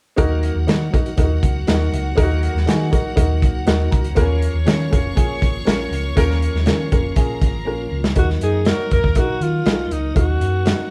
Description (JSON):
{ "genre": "uptempo 1960s-style soul", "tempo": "120 BPM", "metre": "4/4", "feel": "straight", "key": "Eb minor", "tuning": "A4 = 442 Hz", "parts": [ { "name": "clear studio string section", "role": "second line", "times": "0.2-8.1 s", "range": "Gb4 to Db6", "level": "-34 LUFS", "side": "equal", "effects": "none" }, { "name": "warm upright piano", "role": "accompaniment", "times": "0.2-10.9 s", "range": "Bb3 to Bb5", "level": "-26 LUFS", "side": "equal", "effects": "none" }, { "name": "tonewheel organ", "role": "sustained chords", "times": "0.2-10.9 s", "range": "F3 to Bb4", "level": "-35 LUFS", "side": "equal", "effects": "chorus vibrato, fast rotary speaker" }, { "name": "hollow-body short-scale fingered electric bass", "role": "bass", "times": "0.2-10.7 s", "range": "F1 to Eb3", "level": "-23 LUFS", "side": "equal", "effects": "none" }, { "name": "crunchy breakbeat drum kit", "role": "drums", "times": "0.2-10.8 s", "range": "hi-hat, kick drum, snare drum", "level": "-21 LUFS", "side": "equal", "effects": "none" }, { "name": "warm horn section", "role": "second line", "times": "6.2-9.4 s", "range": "Eb3 to Bb4", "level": "-30 LUFS", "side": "equal", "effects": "none" }, { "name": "warm alto saxophone", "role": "melody", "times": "8.2-10.9 s", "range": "Eb4 to Bb4", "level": "-25 LUFS", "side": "equal", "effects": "none" } ], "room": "moderate stone room reverb, RT60 1.2 s", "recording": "band playing live in one room", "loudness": "-18 LUFS", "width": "mono", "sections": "0.2-8.2 A section; 8.2-10.9 B section", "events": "upright piano fill 3.4-4.2; band accent 6.2-8.2; drum fill 7.7-8.2", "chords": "0.2 Ebm; 4.2 Bbm; 8.2 Ebm" }